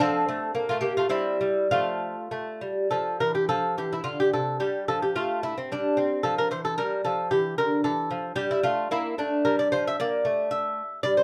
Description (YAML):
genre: classical, baroque-style dance for lute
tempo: 100-115 BPM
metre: 3/4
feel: rubato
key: F major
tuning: A4 = 439 Hz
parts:
  - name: lute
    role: solo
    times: 0.0-11.2 s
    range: C3 to E5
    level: -26 LUFS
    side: equal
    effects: none
room: wet studio reverb, RT60 0.5 s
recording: band playing live in one room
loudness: -26 LUFS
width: mono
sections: 0.0-3.5 A section; 3.5-11.2 B section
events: none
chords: 0.0 F; 0.6 Gm9/A; 1.1 C/G; 1.7 F; 3.5 F5; 5.1 F; 6.7 G5; 8.4 Gm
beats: | 0.02 0.56 1.12 | 1.71 2.31 2.91 | 3.49 4.05 4.59 | 5.14 5.68 6.21 | 6.75 7.29 7.83 | 8.37 8.91 9.44 | 9.97 10.50 11.02